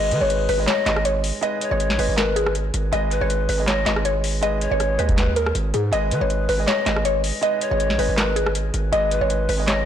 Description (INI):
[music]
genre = hip hop, trap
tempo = 160 BPM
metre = 4/4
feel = half-time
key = G# minor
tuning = A4 = 438 Hz
[part]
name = mallet-like synth pluck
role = melody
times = 0.0-9.8 s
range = G#4 to D#5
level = -23 LUFS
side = left 2 dB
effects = chorus, phaser, ping-pong delay
[part]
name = felt-muted upright piano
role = accompaniment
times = 0.0-9.9 s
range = G#3 to D#5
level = -28 LUFS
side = right 6 dB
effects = none
[part]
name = hard-hitting 808-style bass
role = bass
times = 0.0-9.8 s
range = G#1 to D#3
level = -24 LUFS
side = right 1 dB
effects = none
[part]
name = breathy large pan pipes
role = second line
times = 0.1-9.9 s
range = A#4 to D#5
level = -28 LUFS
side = left 6 dB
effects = ping-pong delay
[part]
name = booming analog drum machine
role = drums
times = 0.1-9.8 s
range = handclaps, hi-hat, kick drum, rim click, snare drum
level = -24 LUFS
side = equal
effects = none
[sound]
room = light reverb, digital ambience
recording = blown-out, overdriven recording, overdrive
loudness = -18 LUFS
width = side -9 dB against mid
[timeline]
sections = 0.0-9.9 A section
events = none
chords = 0.0 G#m